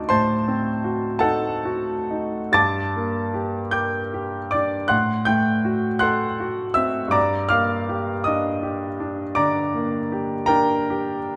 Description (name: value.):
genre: classical, romantic nocturne for solo piano.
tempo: 41-56 BPM (dotted quarters).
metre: 12/8.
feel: rubato.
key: G minor.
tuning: A4 = 440 Hz.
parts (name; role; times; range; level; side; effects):
clear baby grand piano; solo; 0.0-11.4 s; G2 to A6; -22 LUFS; equal; none.
room: moderate recital hall reverb, RT60 1.6 s.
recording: close, detailed microphones.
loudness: -22 LUFS.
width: mono.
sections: 0.0-11.4 A section.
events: none.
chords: 0.0 D7b9; 2.6 Gm; 4.9 F#dim/A; 7.2 Gm.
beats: 0.12 1.23 | 2.56 3.75 4.92 6.03 | 7.16 8.28 9.38 10.49.